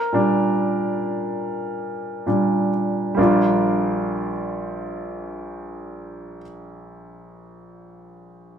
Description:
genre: pop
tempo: free time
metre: none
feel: none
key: Bb major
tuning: A4 = 440 Hz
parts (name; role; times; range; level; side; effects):
- clear grand piano; solo; 0.0-8.6 s; Bb1 to Bb4; -21 LUFS; equal; none
room: wet large studio reverb, RT60 1.2 s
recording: band playing live in one room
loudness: -20 LUFS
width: side -8 dB against mid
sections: 0.0-3.2 A section; 3.2-6.9 B section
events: slowing down 0.0-3.2; grand piano solo 0.0-3.2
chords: 0.0 Bb6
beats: free time

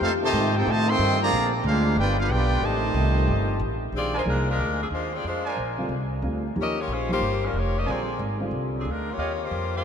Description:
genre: jazz, big band swing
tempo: 183 BPM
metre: 4/4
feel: swing 62% on 8ths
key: Bb mixolydian from 3.9 s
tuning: A4 = 439 Hz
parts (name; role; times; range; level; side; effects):
- clear trumpet section; melody; 0.0-3.6 s; D4 to C6; -26 LUFS; equal; none
- warm trombone section; second line; 0.0-3.6 s; C3 to G4; -28 LUFS; right 2 dB; none
- warm trombone section; sustained chords; 0.0-3.9 s; C3 to A4; -35 LUFS; left 2 dB; none
- upright bass; bass; 0.0-9.8 s; F1 to A2; -26 LUFS; equal; none
- dark baby grand piano; accompaniment; 3.9-8.8 s; D3 to Ab4; -32 LUFS; equal; none
- edgy saxophone section; melody; 4.0-9.8 s; F3 to Eb5; -28 LUFS; left 3 dB; none
- clear trumpet section; stabs; 4.1-9.3 s; G4 to Ab5; -34 LUFS; right 2 dB; none
room: wet cathedral reverb, RT60 5.5 s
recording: in a vast, echoing space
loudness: -22 LUFS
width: side -7 dB against mid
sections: 0.0-3.9 A section; 3.9-9.8 B section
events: none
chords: 0.0 F9; 1.3 Bb9; 2.0 G7; 2.6 F9; 3.9 Bb9; 6.6 Eb9; 7.9 Bb9; 9.2 Eb9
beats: | 0.01 0.33 0.66 0.98 | 1.31 1.64 1.97 2.29 | 2.62 2.95 3.28 3.60 | 3.93 4.26 4.59 4.92 | 5.24 5.57 5.90 6.23 | 6.56 6.89 7.21 7.54 | 7.87 8.20 8.53 8.86 | 9.19 9.52

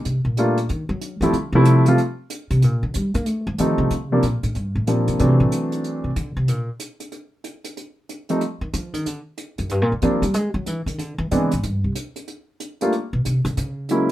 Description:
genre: jazz piano trio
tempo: 186 BPM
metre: 4/4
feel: swing 63% on 8ths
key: unclear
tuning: A4 = 440 Hz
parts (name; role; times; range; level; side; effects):
- upright bass; bass; 0.0-14.1 s; C2 to Bb3; -20 LUFS; equal; none
- hi-hat; drums; 0.1-14.1 s; none; -34 LUFS; right 2 dB; none
- warm grand piano; melody; 0.4-6.1, 8.3-14.1 s; E3 to F4; -19 LUFS; equal; none
room: light reverb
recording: minimal, uncompressed stereo recording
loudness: -19 LUFS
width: side -14 dB against mid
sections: 0.0-3.9 A section; 3.9-14.1 A section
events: upright bass solo 0.0-14.1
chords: 0.0 Gm9; 0.7 N.C.; 1.3 Fmaj9; 2.6 Bb6; 3.3 F7; 3.9 Bb69; 5.2 D7; 6.5 N.C.; 8.4 Ebsus2; 9.1 Bb6; 10.3 E7; 11.6 Am7 (rootless); 12.9 Bm; 13.6 Gb9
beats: | 0.05 0.37 0.69 1.01 | 1.33 1.66 1.98 2.30 | 2.62 2.94 3.27 3.59 | 3.91 4.23 4.55 4.87 | 5.20 5.52 5.84 6.16 | 6.48 6.80 7.13 7.45 | 7.77 8.09 8.41 8.74 | 9.06 9.38 9.70 10.02 | 10.35 10.67 10.99 11.31 | 11.63 11.96 12.28 12.60 | 12.92 13.24 13.57 13.89

